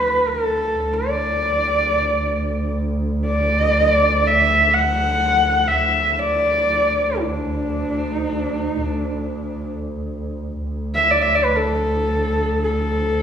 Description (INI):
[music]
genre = mongolian traditional, Mongolian folk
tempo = free time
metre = none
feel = none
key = D gong mode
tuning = A4 = 440 Hz
[part]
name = warm horsehead fiddle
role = melody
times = 0.0-13.2 s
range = D4 to F#5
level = -18 LUFS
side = equal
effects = none
[part]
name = warm double bass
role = drone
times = 0.0-13.2 s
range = D2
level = -23 LUFS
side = right 1 dB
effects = none
[sound]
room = wet recital hall reverb, RT60 1.4 s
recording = recorded in a church or concert hall, small room ambience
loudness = -17 LUFS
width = side -8 dB against mid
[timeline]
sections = 0.0-10.6 A section; 10.6-13.2 A section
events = none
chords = none